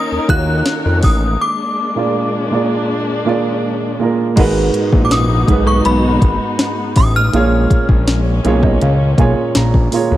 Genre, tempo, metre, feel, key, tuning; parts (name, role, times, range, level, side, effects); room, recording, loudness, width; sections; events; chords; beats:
contemporary R&B; 81 BPM; 4/4; straight; A4 = 440 Hz
synth chime; melody; 0.0-7.9 s; Cb6 to Gb6; -20 LUFS; left 1 dB; ensemble chorus, digital delay
dark grand piano; accompaniment; 0.0-10.2 s; Ab2 to Bb5; -17 LUFS; right 4 dB
warm studio string section; sustained chords; 0.0-10.2 s; Eb3 to Bb4; -22 LUFS; left 2 dB; sidechain pumping
fat analog bass; bass; 0.1-10.2 s; Ab1 to F2; -15 LUFS; left 1 dB
smooth R&B drum kit; drums; 0.3-10.1 s; crash cymbal, hi-hat, kick drum, rim click, snare drum; -15 LUFS; left 1 dB
digital ambience; -12 LUFS; side -14 dB against mid
0.0-4.4 A section; 4.4-10.2 B section
break 1.4-4.4; grand piano fill 8.1-10.2
0.0 Ebm9; 1.4 Bb7; 4.4 Abm7; 7.3 Bbm7
0.67 | 1.41 2.15 2.89 3.63 | 4.37 5.11 5.85 6.59 | 7.33 8.07 8.81 9.55